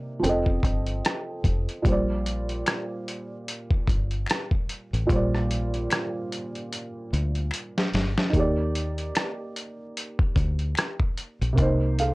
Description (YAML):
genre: lo-fi hip hop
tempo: 74 BPM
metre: 4/4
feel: swing 57% on 16ths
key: Bb major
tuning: A4 = 440 Hz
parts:
  - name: felt-muted upright piano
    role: accompaniment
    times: 0.0-12.1 s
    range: Bb2 to F5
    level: -28 LUFS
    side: right 1 dB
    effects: low-pass filter
  - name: fingered electric bass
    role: bass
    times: 0.2-12.1 s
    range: F1 to Eb2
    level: -27 LUFS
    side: equal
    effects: none
  - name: dusty soul sampler-style drum kit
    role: drums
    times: 0.2-12.1 s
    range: hi-hat, kick drum, rim click, snare drum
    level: -25 LUFS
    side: equal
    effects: overdrive
  - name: finger snaps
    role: percussion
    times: 2.7-11.0 s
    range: none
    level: -36 LUFS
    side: left 3 dB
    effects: none
room: little or no reverb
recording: worn, warbling old tape, cassette tape, warbly pitch drift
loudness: -23 LUFS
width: side -22 dB against mid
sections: 0.0-8.3 A section; 8.3-12.1 B section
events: drum fill 6.7-8.3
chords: 0.2 F7; 1.8 Bb69; 8.3 Ebmaj7; 11.6 Cm7